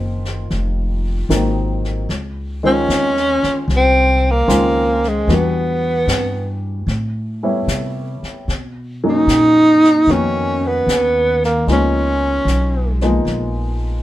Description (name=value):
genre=jazz ballad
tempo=75 BPM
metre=4/4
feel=swing 68% on 8ths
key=unclear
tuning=A4 = 440 Hz
part: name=warm baby grand piano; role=accompaniment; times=0.0-14.0 s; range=Eb3 to C#5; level=-21 LUFS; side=left 1 dB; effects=none
part: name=upright bass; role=bass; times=0.0-14.0 s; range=F1 to C3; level=-20 LUFS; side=equal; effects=none
part: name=jazz brush drum kit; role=drums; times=0.3-14.0 s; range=brushed snare drum, hi-hat, snare drum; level=-27 LUFS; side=left 2 dB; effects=none
part: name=breathy tenor saxophone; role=melody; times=2.7-13.0 s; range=Ab3 to D#4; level=-14 LUFS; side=right 1 dB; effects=none
room=light reverb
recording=band playing live in one room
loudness=-14 LUFS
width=side -14 dB against mid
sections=0.0-14.0 A section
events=none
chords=0.0 Ab13; 2.1 Dbmaj9; 5.3 Em7; 6.9 A9; 8.5 Bmaj9; 11.7 Db13